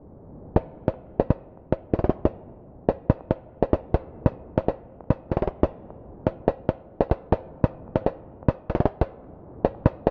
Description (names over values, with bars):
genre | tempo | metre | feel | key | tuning
hip hop | 142 BPM | 4/4 | half-time | none | none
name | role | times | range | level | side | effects
electronic hi-hat | drums | 0.6-10.1 s | none | -42 LUFS | equal | none
room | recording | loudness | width
little or no reverb | dark, warm production, vinyl crackle, low-pass filter | -27 LUFS | mono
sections
0.6-10.1 A section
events
kick muted 0.6-7.3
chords
none